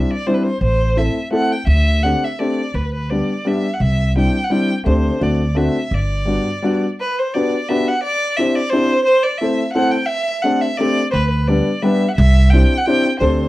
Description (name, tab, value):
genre	musette waltz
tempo	171 BPM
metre	3/4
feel	swing 55% on 8ths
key	G major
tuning	A4 = 441 Hz
part	rich violin	melody	0.0-13.5 s	B4 to G5	-20 LUFS	right 1 dB	slapback echo
part	clear upright piano	accompaniment	0.0-13.5 s	G3 to C5	-18 LUFS	left 1 dB	none
part	upright bass	bass	0.0-6.4, 11.1-13.4 s	G1 to D2	-16 LUFS	equal	none
room	light reverb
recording	dry, close 1970s-style studio recording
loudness	-15 LUFS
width	side -17 dB against mid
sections	0.0-7.0 A section; 7.0-13.5 A section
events	none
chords	0.0 Cadd9; 0.6 Am; 1.7 D7sus4; 2.7 G/D; 3.8 Cadd9; 4.9 D7sus4; 5.2 D7; 5.9 Gmaj7; 8.0 Cadd9; 9.1 Am; 10.1 D7sus4; 11.2 G/D; 12.2 Cadd9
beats	0.27 | 0.61 0.97 1.32 | 1.67 2.02 2.38 | 2.74 3.10 3.45 | 3.81 4.16 4.51 | 4.86 5.21 5.56 | 5.91 6.27 6.63 | 6.98 7.34 7.69 | 8.03 8.38 8.72 | 9.07 9.41 9.76 | 10.10 10.45 10.80 | 11.15 11.50 11.85 | 12.19 12.53 12.88 | 13.22